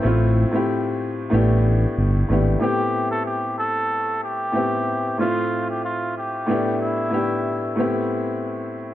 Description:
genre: hip hop.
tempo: 93 BPM.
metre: 4/4.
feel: swing 54% on 16ths.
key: A minor.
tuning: A4 = 440 Hz.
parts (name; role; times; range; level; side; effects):
warm upright piano; accompaniment; 0.0-8.9 s; A2 to E5; -22 LUFS; left 1 dB; high-pass filter, low-pass filter, plate reverb.
smooth gliding synth bass; bass; 0.0-2.6 s; G1 to A1; -18 LUFS; equal; none.
trumpet with cup mute; melody; 2.6-7.7 s; E4 to A4; -26 LUFS; equal; high-pass filter, low-pass filter, plate reverb, digital delay.
room: moderate small room reverb, RT60 0.5 s.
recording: none.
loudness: -19 LUFS.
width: side -13 dB against mid.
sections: 0.0-2.6 A section; 2.6-8.9 B section.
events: break 0.0-2.6, 7.8-8.9.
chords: 0.0 Am7; 1.3 Gadd9; 2.6 Am7; 5.2 Fmaj9/A; 6.5 Em7/A; 7.8 Am7.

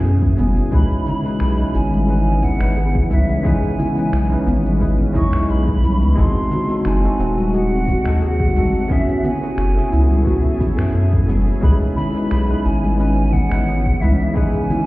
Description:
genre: sunset chillout.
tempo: 88 BPM.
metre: 4/4.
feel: swing 53% on 16ths.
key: C# minor.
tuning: A4 = 440 Hz.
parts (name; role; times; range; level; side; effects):
bell-like tine electric piano; accompaniment; 0.0-14.8 s; G#3 to D#5; -22 LUFS; equal; auto-pan.
shimmering ambient pad; sustained chords; 0.0-14.9 s; B2 to G#4; -25 LUFS; equal; chorus, built-in reverb.
soft round pluck; arpeggios; 0.0-14.9 s; B3 to G#4; -27 LUFS; right 1 dB; chorus, vintage 12-bit sampler grit, tape echo.
round analog bass; bass; 0.0-14.1 s; D#1 to F#2; -17 LUFS; equal; none.
electronic shaker and finger snaps; drums; 0.0-14.8 s; none; -38 LUFS; equal; none.
electronic kick drum; drums; 0.2-14.5 s; none; -19 LUFS; equal; none.
congas; percussion; 0.4-14.8 s; none; -26 LUFS; left 1 dB; none.
hollow concert flute; melody; 0.8-14.9 s; E5 to C#6; -27 LUFS; right 1 dB; ping-pong delay.
room: light reverb, digital ambience.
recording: heard muffled through a wall, stone room reverb, EQ, nothing above 11.0 kHz.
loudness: -15 LUFS.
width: side -19 dB against mid.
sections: 0.0-14.9 A section.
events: none.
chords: 0.0 F#m11; 0.7 C#m7; 6.2 G#7b9; 8.9 F#m11; 11.6 C#m7.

